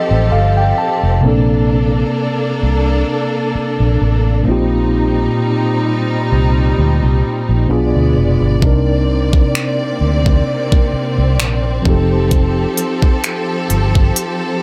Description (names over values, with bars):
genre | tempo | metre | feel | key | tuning
contemporary R&B | 65 BPM | 4/4 | swing 54% on 16ths | unclear | A4 = 440 Hz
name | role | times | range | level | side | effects
mellow tine electric piano | accompaniment | 0.0-14.6 s | Bb2 to A5 | -20 LUFS | equal | none
warm symphonic string section | sustained chords | 0.0-14.6 s | C3 to D5 | -22 LUFS | equal | none
vintage muted fingered electric bass | bass | 0.1-14.1 s | F1 to D2 | -17 LUFS | equal | none
trap drum kit | drums | 8.6-14.4 s | finger snaps, hi-hat, kick drum | -16 LUFS | equal | overdrive
room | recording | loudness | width
little or no reverb | none | -15 LUFS | mono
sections
0.0-14.6 A section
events
tine electric piano fill 0.0-1.2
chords
0.0 F9; 1.2 Bbmaj9; 4.5 Eb69/Bb; 7.7 Bdim7; 8.6 Cm9; 11.9 F9